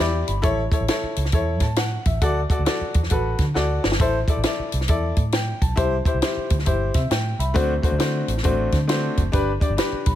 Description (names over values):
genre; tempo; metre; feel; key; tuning
uptempo 1960s-style soul; 135 BPM; 4/4; swing 64% on 8ths; unclear; A4 = 439 Hz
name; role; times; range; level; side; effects
clear upright piano; accompaniment; 0.0-10.1 s; A3 to B5; -24 LUFS; left 2 dB; none
vintage muted fingered electric bass; bass; 0.0-10.2 s; F#1 to D3; -24 LUFS; equal; none
compact cocktail drum kit; drums; 0.3-10.1 s; hi-hat, kick drum, snare drum; -22 LUFS; equal; none
room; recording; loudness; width
little or no reverb; none; -19 LUFS; side -12 dB against mid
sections
0.0-10.2 A section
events
upright piano fill 0.0-0.4, 6.7-7.6, 9.8-10.2; drum fill 3.6-4.0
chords
0.4 A; 2.2 D; 4.0 Am; 5.8 C; 7.6 D7; 9.3 G